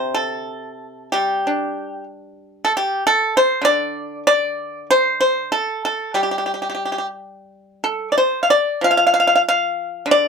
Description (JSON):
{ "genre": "chinese traditional, Chinese solo plucked strings", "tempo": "95 BPM", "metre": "4/4", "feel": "rubato", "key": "D yu mode", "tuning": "A4 = 440 Hz", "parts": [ { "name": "pipa", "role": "solo", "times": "0.0-10.3 s", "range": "C3 to F5", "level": "-16 LUFS", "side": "equal", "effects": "none" } ], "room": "moderate small room reverb, RT60 0.5 s", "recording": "none", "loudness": "-16 LUFS", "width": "side -5 dB against mid", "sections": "0.0-10.3 A section", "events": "none", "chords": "none" }